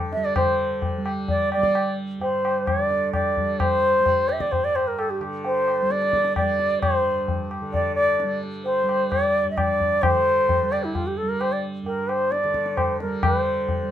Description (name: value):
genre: indian classical, Hindustani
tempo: 130 BPM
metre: 7/4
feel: straight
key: unclear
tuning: A4 = 438 Hz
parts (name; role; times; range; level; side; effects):
- tanpura; drone; 0.0-13.9 s; G2 to G3; -30 LUFS; right 2 dB; none
- bright bansuri; melody; 0.1-13.9 s; E4 to E5; -21 LUFS; equal; none
- tabla; percussion; 0.1-13.9 s; none; -27 LUFS; left 2 dB; none
room: moderate studio reverb, RT60 0.5 s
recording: minimal, uncompressed stereo recording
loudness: -20 LUFS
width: side -10 dB against mid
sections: 0.4-13.2 A section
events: none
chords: none